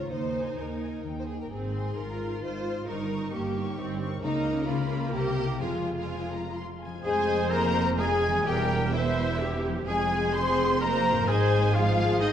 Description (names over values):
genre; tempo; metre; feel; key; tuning
classical, dramatic, fast romantic movement for symphony orchestra; 128 BPM; 3/4; rubato; F minor from 4.2 s; A4 = 438 Hz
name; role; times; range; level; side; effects
warm symphonic violin section; melody; 0.0-12.3 s; Eb5 to Db6; -34 LUFS; left 3 dB; none
clear symphonic violin section; second line; 0.0-12.3 s; Eb4 to Db5; -33 LUFS; left 2 dB; none
clear symphonic viola section; accompaniment; 0.0-12.3 s; Ab3 to C5; -33 LUFS; right 1 dB; none
concert harp; arpeggios; 0.0-12.3 s; G2 to C6; -35 LUFS; left 6 dB; none
rich symphonic cello section; bass; 0.0-12.3 s; Eb2 to Db3; -33 LUFS; right 3 dB; none
warm studio double bass section; bass; 0.0-12.3 s; E1 to Eb2; -33 LUFS; right 4 dB; none
clear oboe; second line; 7.0-12.3 s; Eb4 to C5; -34 LUFS; right 1 dB; none
warm French horn section; sustained chords; 7.0-12.3 s; Eb3 to C4; -31 LUFS; left 3 dB; none
hollow concert flute; second line; 7.1-12.3 s; Eb5 to C6; -32 LUFS; equal; none
room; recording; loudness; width
wet scoring stage reverb, RT60 2.0 s; worn, warbling old tape, cassette tape, warbly pitch drift; -25 LUFS; side -9 dB against mid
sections
0.0-7.0 A section; 7.0-12.3 B section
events
none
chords
0.1 Ebsus4; 1.1 Eb; 1.5 Ab; 2.9 Eb7/G; 4.2 Bbm/Db; 4.7 Db7; 5.1 C7; 5.6 Fm; 8.5 C7/E; 9.9 Fm; 11.3 Fm/Ab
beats
| 0.11 0.58 1.05 | 1.52 1.99 2.44 | 2.90 3.34 3.79 | 4.24 4.69 5.14 | 5.62 6.09 6.57 | 7.04 7.52 7.99 | 8.46 8.94 9.41 | 9.87 10.34 10.81 | 11.27 11.74 12.20